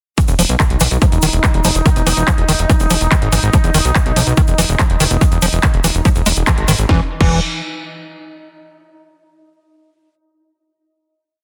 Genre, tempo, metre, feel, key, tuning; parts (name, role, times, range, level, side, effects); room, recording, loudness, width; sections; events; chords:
psychedelic trance; 143 BPM; 4/4; straight; E major; A4 = 443 Hz
bubbling stepped-filter texture; sustained chords; 0.6-6.9 s; D#4; -26 LUFS; equal; chorus, built-in reverb, sidechain pumping
overdriven acid bass; riff; 0.2-7.4 s; D#3 to G#3; -22 LUFS; equal; sidechain pumping, delay
electronic kick drum; drums; 0.2-7.3 s; -17 LUFS; equal
techno drum kit; drums; 0.2-7.3 s; crash cymbal, handclaps, hi-hat, snare drum; -22 LUFS; equal
tube shaker; percussion; 0.2-6.9 s; -28 LUFS; equal
fat analog bass; bass; 0.3-7.4 s; E1 to B1; -19 LUFS; equal; tube saturation
light reverb, digital ambience; dense, heavily limited modern master; -14 LUFS; mono
0.2-6.9 groove; 6.9-8.6 final chord
filter sweep on acid bass 0.2-6.9; band accent 6.5
0.2 E5; 6.9 N.C.